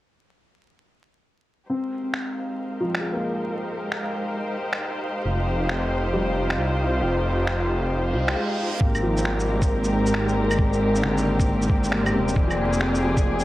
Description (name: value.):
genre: future garage.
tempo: 135 BPM.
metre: 4/4.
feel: swing 64% on 16ths.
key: unclear.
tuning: A4 = 440 Hz.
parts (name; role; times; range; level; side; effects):
dark upright piano; accompaniment; 1.7-13.4 s; C3 to C4; -30 LUFS; left 1 dB; vintage 12-bit sampler grit, sidechain pumping, low-pass filter, analog delay.
muted studio string section; sustained chords; 1.7-13.4 s; F3 to C5; -25 LUFS; equal; sidechain pumping.
wind-like tuned noise texture; texture; 2.3-13.4 s; D5 to F5; -34 LUFS; left 1 dB; built-in reverb.
electronic finger snaps, shaker and claves; drums; 2.1-13.4 s; none; -29 LUFS; equal; vintage 12-bit sampler grit.
swelling detuned saw bass; bass; 5.3-13.4 s; Eb1 to C2; -25 LUFS; equal; tube saturation, sidechain pumping.
reverse cymbal; sound effects; 8.1-8.8 s; none; -34 LUFS; right 5 dB; none.
electronic kick drum; drums; 8.8-13.2 s; none; -21 LUFS; equal; vintage 12-bit sampler grit.
room: light reverb.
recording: dry, gritty hardware recording, vinyl crackle.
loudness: -21 LUFS.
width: side -16 dB against mid.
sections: 1.7-8.8 A section; 8.8-13.4 B section.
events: fade-in on string section 1.7-8.8; filter sweep on upright piano 1.7-8.8; reverse cymbal 8.1-8.8.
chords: 1.7 Abmaj9; 5.3 Fm9; 8.8 Abmaj9; 12.4 Fm9.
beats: | 1.70 2.14 2.59 3.03 | 3.48 3.92 4.37 4.81 | 5.25 5.70 6.14 6.59 | 7.03 7.48 7.92 8.37 | 8.81 9.26 9.70 10.14 | 10.59 11.03 11.48 11.92 | 12.37 12.81 13.26.